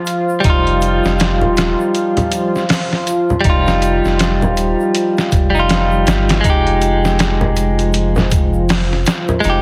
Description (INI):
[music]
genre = trip hop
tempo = 80 BPM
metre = 4/4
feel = swing 60% on 16ths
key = unclear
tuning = A4 = 440 Hz
[part]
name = deep dark ambient pad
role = sustained chords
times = 0.0-9.6 s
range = F3 to F4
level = -22 LUFS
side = equal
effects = chorus, built-in reverb
[part]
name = trip hop sampler-style drum kit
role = drums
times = 0.1-9.6 s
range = hi-hat, kick drum, snare drum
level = -20 LUFS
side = equal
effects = none
[part]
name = egg shaker and congas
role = percussion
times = 0.1-9.6 s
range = none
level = -24 LUFS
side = equal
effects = none
[part]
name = clean electric guitar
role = accompaniment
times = 0.4-9.6 s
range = G3 to G4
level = -19 LUFS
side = equal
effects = harmonic tremolo, tape echo
[part]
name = warm sub bass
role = bass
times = 0.4-9.6 s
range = Eb1 to G1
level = -20 LUFS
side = equal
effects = none
[sound]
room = light reverb, digital ambience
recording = heavily compressed radio sound, multiband compression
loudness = -15 LUFS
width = mono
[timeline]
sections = 0.0-9.6 A section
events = none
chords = 0.4 Ebadd9; 6.4 Fm7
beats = | 0.44 1.19 1.94 2.69 | 3.44 4.19 4.94 5.69 | 6.44 7.19 7.94 8.69 | 9.44